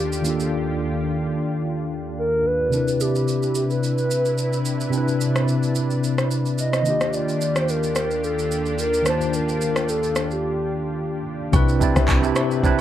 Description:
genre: amapiano.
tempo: 109 BPM.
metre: 4/4.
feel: swing 55% on 16ths.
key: unclear.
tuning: A4 = 438 Hz.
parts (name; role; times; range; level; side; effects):
hollow clarinet-like synth lead; melody; 0.0-11.1 s; G4 to Eb5; -24 LUFS; equal; chorus, tape echo.
tine electric piano; accompaniment; 0.0-12.8 s; C3 to A5; -23 LUFS; equal; slow stereo tremolo.
lush unison pad; sustained chords; 0.0-12.8 s; Eb2 to B4; -28 LUFS; equal; chorus, sidechain pumping.
smooth R&B drum kit; drums; 0.1-12.8 s; handclaps, kick drum, rim click, shaker; -26 LUFS; equal; none.
woody log drum bass; bass; 11.5-12.3 s; C2; -20 LUFS; equal; none.
agogo bells and woodblock; percussion; 11.5-12.8 s; none; -32 LUFS; right 8 dB; none.
room: light reverb.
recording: dark, warm production.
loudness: -19 LUFS.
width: side -11 dB against mid.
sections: 0.0-11.5 A section; 11.5-12.8 B section.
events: hi-hats muted 0.5-2.7; break 10.4-11.5; drop 11.5-12.8.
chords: 0.0 Ebmaj9; 2.7 Cmaj9; 6.9 Ebmaj9; 11.5 Cmaj9.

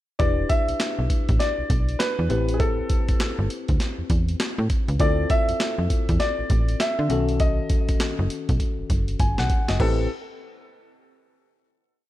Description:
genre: R&B, new jack swing.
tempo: 100 BPM.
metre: 4/4.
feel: swing 62% on 16ths.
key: A minor.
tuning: A4 = 444 Hz.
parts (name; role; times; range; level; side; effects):
clear concert grand piano; melody; 0.2-10.1 s; G#4 to E5; -27 LUFS; equal; digital delay.
tine electric piano; accompaniment; 0.2-10.1 s; D#3 to G#5; -29 LUFS; left 4 dB; none.
slap-like FM bass; bass; 0.2-10.1 s; E1 to D3; -24 LUFS; equal; none.
breakbeat sampler-style drum kit; drums; 0.2-10.0 s; crash cymbal, handclaps, hi-hat, kick drum, snare drum; -23 LUFS; equal; none.
room: little or no reverb.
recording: none.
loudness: -20 LUFS.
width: side -15 dB against mid.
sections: 0.2-9.8 verse; 9.8-12.1 final chord.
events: drum fill 8.6-9.8.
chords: 0.2 Em7; 2.3 Am7; 5.0 Dm9; 7.1 B7; 9.8 Am7.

